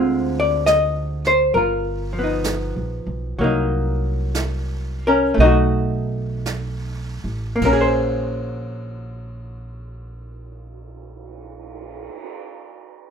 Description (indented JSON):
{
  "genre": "jazz ballad",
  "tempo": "49-70 BPM",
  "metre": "4/4",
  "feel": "swing 68% on 8ths",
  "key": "Bb minor",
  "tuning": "A4 = 440 Hz",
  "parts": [
    { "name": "archtop guitar, miked and amplified", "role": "accompaniment", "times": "0.0-12.3 s", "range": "D3 to Eb5", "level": "-19 LUFS", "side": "left 1 dB", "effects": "none" },
    { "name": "upright bass", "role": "bass", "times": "0.0-12.1 s", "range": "G1 to D2", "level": "-24 LUFS", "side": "right 1 dB", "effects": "none" },
    { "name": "jazz brush drum kit", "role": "drums", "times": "0.7-12.3 s", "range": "brushed snare drum, cymbal swell, hi-hat, kick drum, ride cymbal, snare drum", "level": "-33 LUFS", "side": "right 4 dB", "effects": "none" }
  ],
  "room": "light reverb",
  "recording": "minimal, uncompressed stereo recording",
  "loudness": "-18 LUFS",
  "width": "side -7 dB against mid",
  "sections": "0.0-3.4 A section; 3.4-7.6 B section; 7.6-12.5 C section",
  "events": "slowing down 0.0-7.6",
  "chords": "0.0 Dm7b5; 1.5 G7alt; 3.4 Cm7b5; 5.4 B7; 7.6 Bbm9",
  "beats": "0.67 1.54 2.44 | 3.38 4.35 5.37 6.45 | 7.62 8.85 10.07 11.29"
}